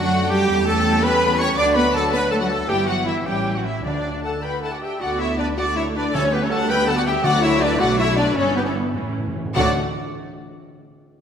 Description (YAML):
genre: quick classical-period movement for symphony orchestra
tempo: 95-110 BPM (dotted quarters)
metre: 6/8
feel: rubato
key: D major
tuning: A4 = 440 Hz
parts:
  - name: warm studio violin section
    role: melody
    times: 0.0-9.8 s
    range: B4 to D6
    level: -26 LUFS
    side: left 4 dB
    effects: none
  - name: silver concert flute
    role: second line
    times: 0.0-9.8 s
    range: B4 to D6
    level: -29 LUFS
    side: left 1 dB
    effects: none
  - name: warm clarinet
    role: second line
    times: 0.0-9.7 s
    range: B3 to D5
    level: -27 LUFS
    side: left 1 dB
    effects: none
  - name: warm studio violin section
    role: second line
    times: 0.0-9.8 s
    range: A3 to B4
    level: -28 LUFS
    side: left 2 dB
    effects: none
  - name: warm studio viola section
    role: accompaniment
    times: 0.0-9.8 s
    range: D3 to D5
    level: -26 LUFS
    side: right 2 dB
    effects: none
  - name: warm French horn section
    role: sustained chords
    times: 0.0-9.7 s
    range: E3 to B4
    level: -28 LUFS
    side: left 4 dB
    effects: none
  - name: clear trumpet section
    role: stabs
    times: 0.0-9.7 s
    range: D4 to G5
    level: -26 LUFS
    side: right 1 dB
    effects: none
  - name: warm studio cello section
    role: bass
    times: 0.0-9.8 s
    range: D2 to D4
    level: -26 LUFS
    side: right 2 dB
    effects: none
  - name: warm studio double bass section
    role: bass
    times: 0.0-9.8 s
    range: G1 to F#2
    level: -28 LUFS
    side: right 3 dB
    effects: none
  - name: timpani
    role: percussion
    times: 3.9-9.7 s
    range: A2 to D3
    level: -30 LUFS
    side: equal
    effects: none
room: wet scoring stage reverb, RT60 2.0 s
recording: none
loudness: -18 LUFS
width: side -8 dB against mid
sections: 0.0-5.0 A section; 5.0-9.6 B section; 9.6-10.7 C section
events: slowing down 6.7-9.6; timpani fill 8.9-9.6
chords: 0.5 A7/E; 1.6 D; 2.7 Em/G; 3.3 A; 3.8 D; 5.0 Dmaj13; 6.1 Gmaj9#11/D; 7.2 D; 7.8 B5; 8.4 Em/G; 8.9 A; 9.6 D5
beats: | 0.49 1.03 | 1.58 2.13 | 2.68 3.25 | 3.84 4.43 | 5.02 5.58 | 6.14 6.70 | 7.24 7.80 | 8.36 8.95 | 9.56